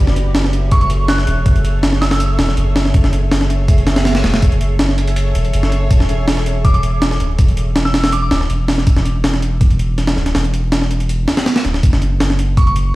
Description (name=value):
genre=drum and bass, jungle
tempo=162 BPM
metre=4/4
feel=straight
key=unclear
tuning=A4 = 443 Hz
part: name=soft dub sub bass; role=bass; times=0.0-12.9 s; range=D1 to F#1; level=-16 LUFS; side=equal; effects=tube saturation
part: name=jungle sampler-style drum kit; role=drums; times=0.1-12.8 s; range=hi-hat, kick drum, snare drum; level=-15 LUFS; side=equal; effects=none
part: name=soft synth bell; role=melody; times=0.7-2.5, 6.6-8.3, 12.6-12.9 s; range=C#6 to F#6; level=-23 LUFS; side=right 1 dB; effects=chorus, dub echo
room=digital ambience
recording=played on a big sound system in a bare room, stone room reverb, vinyl crackle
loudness=-12 LUFS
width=side -18 dB against mid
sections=0.0-5.9 A section; 5.9-12.9 A section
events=drop 0.0-5.9, 5.9-12.9; kick drops out 5.2-5.9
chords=0.0 F#m7; 5.9 N.C.; 11.8 F#5